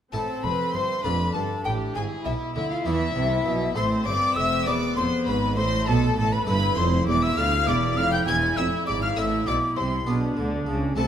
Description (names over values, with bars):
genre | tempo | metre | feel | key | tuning
classical, baroque-style concerto movement with solo episodes | 66 BPM (dotted quarters) | 6/8 | straight | A minor | A4 = 436 Hz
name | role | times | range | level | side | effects
mellow hollow silver concert flute | melody | 0.1-11.1 s | E5 to G#6 | -28 LUFS | left 1 dB | none
rich chamber violin section | melody | 0.1-11.1 s | E5 to G#6 | -32 LUFS | left 3 dB | none
warm chamber violin section | second line | 0.1-11.1 s | E4 to G#5 | -30 LUFS | left 3 dB | none
harpsichord | accompaniment | 0.1-11.1 s | D2 to D5 | -34 LUFS | equal | none
warm chamber viola section | accompaniment | 0.1-11.1 s | A3 to E4 | -30 LUFS | left 1 dB | none
rich chamber double bass section | bass | 0.1-11.0 s | E1 to E2 | -28 LUFS | right 2 dB | none
warm chamber cello section | bass | 0.1-11.1 s | D2 to E3 | -28 LUFS | right 2 dB | none
room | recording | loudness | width
moderate recital hall reverb, RT60 1.5 s | none | -21 LUFS | side -9 dB against mid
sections
0.1-11.1 A section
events
none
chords
0.1 Am; 1.0 Dm/F; 2.0 E7; 3.8 Am; 4.7 E; 5.6 Am; 7.4 Dm; 8.3 E7; 9.2 Am; 10.1 G#dim/B